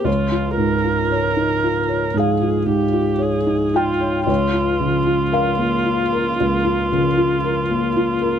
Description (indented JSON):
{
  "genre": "neoclassical piano and strings",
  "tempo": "57 BPM",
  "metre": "4/4",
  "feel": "rubato",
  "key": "unclear",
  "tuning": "A4 = 442 Hz",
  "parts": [
    { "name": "dark viola", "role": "accompaniment", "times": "0.0-8.4 s", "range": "F4 to Bb4", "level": "-21 LUFS", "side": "right 2 dB", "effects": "none" },
    { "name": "felt-muted upright piano", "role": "accompaniment", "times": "0.0-8.4 s", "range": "Db2 to G5", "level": "-18 LUFS", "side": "left 1 dB", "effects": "none" }
  ],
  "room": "little or no reverb",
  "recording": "close, detailed microphones",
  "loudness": "-16 LUFS",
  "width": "side -8 dB against mid",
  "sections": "0.0-8.4 A section",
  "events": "none",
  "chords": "0.1 Dbadd9; 4.3 Bbm/Db",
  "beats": "| 0.07 1.13 2.18 3.23 | 4.29 5.35 6.40 7.45"
}